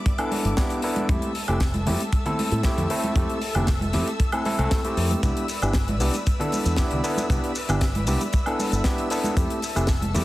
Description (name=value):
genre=nu-disco, nu disco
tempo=116 BPM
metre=4/4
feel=straight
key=C major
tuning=A4 = 440 Hz
part: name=clear symphonic string section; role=sustained chords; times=0.0-10.2 s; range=B3 to E6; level=-33 LUFS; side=left 1 dB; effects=sidechain pumping
part: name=kick drum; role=drums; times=0.1-10.0 s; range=none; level=-24 LUFS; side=equal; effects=studio reverb
part: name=tight funk drum kit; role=drums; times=0.1-10.2 s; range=hi-hat, shaker, snare drum, woodblock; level=-30 LUFS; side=left 1 dB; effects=studio reverb
part: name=overdriven tine electric piano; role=accompaniment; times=0.2-10.2 s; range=A3 to A4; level=-27 LUFS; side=equal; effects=sidechain pumping, dub echo
part: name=congas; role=percussion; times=0.3-10.1 s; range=none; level=-31 LUFS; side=right 1 dB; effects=none
part: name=fingered electric bass with an envelope filter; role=bass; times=0.4-10.2 s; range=F1 to A2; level=-25 LUFS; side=equal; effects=tube saturation, sidechain pumping
room=small room ambience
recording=heavily compressed radio sound, multiband compression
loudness=-21 LUFS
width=side -17 dB against mid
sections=0.0-10.2 A section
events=none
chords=0.0 Cmaj9 (rootless); 1.1 Fmaj7; 5.2 Cmaj9 (rootless); 9.4 Fmaj7